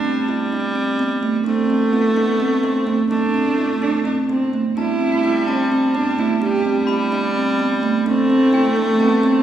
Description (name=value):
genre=contemporary instrumental, chamber music in an uneven meter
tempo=255 BPM (eighths)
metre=7/8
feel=straight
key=unclear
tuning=A4 = 445 Hz
part: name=dark cello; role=melody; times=0.0-9.4 s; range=A3 to G4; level=-21 LUFS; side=right 2 dB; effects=none
part: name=bright viola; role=second line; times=0.0-9.4 s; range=G3 to A3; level=-22 LUFS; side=equal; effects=none
part: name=kalimba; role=arpeggios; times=0.0-9.4 s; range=A3 to E4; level=-19 LUFS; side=right 2 dB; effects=none
part: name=glockenspiel with soft plastic mallets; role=texture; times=4.8-9.4 s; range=G5 to B5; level=-29 LUFS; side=left 2 dB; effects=none
room=wet scoring stage reverb, RT60 2.0 s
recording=recorded in a church or concert hall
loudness=-16 LUFS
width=side -10 dB against mid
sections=0.0-9.4 A section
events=none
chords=0.0 Am; 8.1 Am7